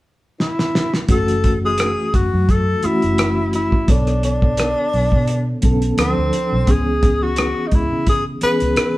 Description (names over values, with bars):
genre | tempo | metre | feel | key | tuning
lush 1970s-style soul | 86 BPM | 4/4 | swing 54% on 16ths | F# minor | A4 = 440 Hz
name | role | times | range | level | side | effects
breathy tenor saxophone | melody | 0.4-9.0 s | C4 to B4 | -20 LUFS | left 1 dB | none
cloth-damped thuddy drum kit | drums | 0.4-8.9 s | hi-hat, kick drum, rim click, snare drum | -18 LUFS | equal | none
mellow reed electric piano | accompaniment | 1.1-9.0 s | D3 to C#5 | -22 LUFS | equal | fast tremolo
vintage muted fingered electric bass | bass | 1.1-8.8 s | F#1 to C#3 | -21 LUFS | equal | none
room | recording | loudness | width
moderate studio reverb, RT60 0.8 s | band playing live in one room | -15 LUFS | side -18 dB against mid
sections
0.0-1.1 A section; 1.1-9.0 B section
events
drum fill 0.4-1.1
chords
0.0 N.C.; 1.1 F#m7; 3.9 Bm9; 6.0 Dm7; 6.7 C#m7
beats
0.39 | 1.09 1.79 2.49 3.19 | 3.88 4.58 5.28 5.98 | 6.67 7.37 8.07 8.77